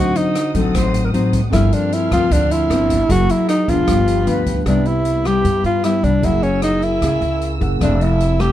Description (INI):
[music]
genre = bossa nova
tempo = 153 BPM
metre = 4/4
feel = straight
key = unclear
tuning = A4 = 438 Hz
[part]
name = breathy alto saxophone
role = melody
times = 0.0-8.5 s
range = C#4 to G4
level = -18 LUFS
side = right 1 dB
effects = none
[part]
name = nylon-string guitar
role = accompaniment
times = 0.0-8.5 s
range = G2 to Ab4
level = -20 LUFS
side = left 3 dB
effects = none
[part]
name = tine electric piano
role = accompaniment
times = 0.0-8.5 s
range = C4 to F6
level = -29 LUFS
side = right 2 dB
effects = medium stereo tremolo
[part]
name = dark studio violin section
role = sustained chords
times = 0.0-8.5 s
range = B3 to F6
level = -33 LUFS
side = equal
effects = none
[part]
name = upright bass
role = bass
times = 0.0-8.5 s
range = Fb1 to G2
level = -20 LUFS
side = right 1 dB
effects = none
[part]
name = open jazz drum kit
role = drums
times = 0.2-8.5 s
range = hi-hat, kick drum, rim click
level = -25 LUFS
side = equal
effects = none
[part]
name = breathy mellow silver concert flute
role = second line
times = 0.5-1.4, 4.1-4.6 s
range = G4 to C5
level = -25 LUFS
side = left 2 dB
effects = none
[sound]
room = light reverb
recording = dark, warm production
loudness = -14 LUFS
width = side -12 dB against mid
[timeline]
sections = 0.0-4.7 A section; 4.7-8.5 B section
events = none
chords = 0.0 D7b9; 1.5 Gm11; 3.1 Gb9; 3.9 G7; 4.7 Cmaj7; 6.2 F#9; 7.8 Fmaj7